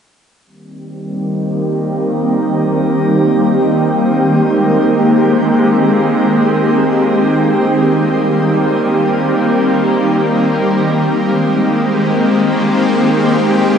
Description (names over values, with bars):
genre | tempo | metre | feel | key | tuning
hip hop | free time | none | none | Eb major | A4 = 440 Hz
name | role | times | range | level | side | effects
shimmering ambient pad | sustained chords | 1.0-13.8 s | Eb3 to G4 | -11 LUFS | equal | chorus, built-in reverb, low-pass filter
room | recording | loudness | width
wet shimmer reverb, RT60 6.4 s | nothing above 10.7 kHz | -11 LUFS | side -7 dB against mid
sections
0.5-13.8 A section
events
filter sweep on ambient pad 0.5-13.8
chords
0.5 Eb6; 4.0 Abmaj9/Eb; 7.5 Eb6; 11.1 Abmaj9/Eb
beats
free time